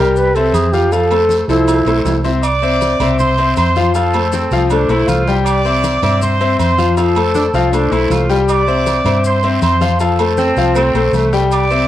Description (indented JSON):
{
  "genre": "latin, salsa",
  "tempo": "159 BPM",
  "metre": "4/4",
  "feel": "straight",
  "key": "C major",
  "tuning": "A4 = 439 Hz",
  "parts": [
    { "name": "bright reedy alto flute", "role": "melody", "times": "0.0-2.3 s", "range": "E4 to B4", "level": "-15 LUFS", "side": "right 2 dB", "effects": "cassette tape" },
    { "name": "bright concert grand piano", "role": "accompaniment", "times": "0.0-11.9 s", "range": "F3 to G5", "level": "-16 LUFS", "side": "left 5 dB", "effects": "cassette tape" },
    { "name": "vintage muted fingered electric bass", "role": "bass", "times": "0.0-11.9 s", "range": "B1 to G2", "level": "-17 LUFS", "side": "right 2 dB", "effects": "none" },
    { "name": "congas", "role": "percussion", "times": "0.2-11.9 s", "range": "none", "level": "-26 LUFS", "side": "left 5 dB", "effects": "none" },
    { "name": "guiro", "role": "percussion", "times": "0.2-11.9 s", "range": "none", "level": "-32 LUFS", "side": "right 10 dB", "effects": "none" },
    { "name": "maracas", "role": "percussion", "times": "0.2-11.9 s", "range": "none", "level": "-35 LUFS", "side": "left 7 dB", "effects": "none" },
    { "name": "agogo bells and timbales", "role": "percussion", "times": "0.4-11.7 s", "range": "none", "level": "-25 LUFS", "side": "right 9 dB", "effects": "none" },
    { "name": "clear trumpet section", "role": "melody", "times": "2.4-11.9 s", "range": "A4 to D6", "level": "-17 LUFS", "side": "right 2 dB", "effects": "cassette tape" },
    { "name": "mellow saxophone section", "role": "second line", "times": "4.3-11.4 s", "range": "A3 to F4", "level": "-19 LUFS", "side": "right 2 dB", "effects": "cassette tape" }
  ],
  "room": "light reverb, studio reverb",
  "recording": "home recording on cassette",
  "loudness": "-11 LUFS",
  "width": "side -12 dB against mid",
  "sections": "0.0-2.4 A section; 2.4-11.9 B section",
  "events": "alto flute solo 0.0-2.4; drum fill 1.5-2.4",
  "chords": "0.0 C; 0.9 F; 2.4 C; 3.9 F; 5.5 C; 7.0 F; 8.5 C; 10.0 F"
}